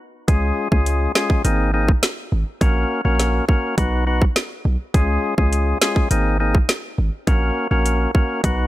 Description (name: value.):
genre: dancehall.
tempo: 103 BPM.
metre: 4/4.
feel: straight.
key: Db major.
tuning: A4 = 440 Hz.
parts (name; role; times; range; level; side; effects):
percussive tonewheel organ; accompaniment; 0.3-8.7 s; Ab3 to Cb5; -22 LUFS; left 2 dB; overdrive.
hard-hitting 808-style bass; bass; 0.3-8.7 s; Ab1 to Db2; -19 LUFS; equal; none.
island pop drum kit; drums; 0.3-8.6 s; hi-hat, kick drum, snare drum; -18 LUFS; equal; overdrive.
room: digital ambience.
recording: none.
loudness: -17 LUFS.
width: side -16 dB against mid.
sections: 0.0-8.7 A section.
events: none.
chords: 0.3 Db; 1.4 Abadd9; 2.6 Gb/Bb; 3.8 Cb; 4.9 Db; 6.1 Abadd9; 7.3 Gb/Bb.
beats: | 0.28 0.86 1.45 2.03 | 2.61 3.19 3.78 4.36 | 4.94 5.53 6.11 6.69 | 7.27 7.86 8.44.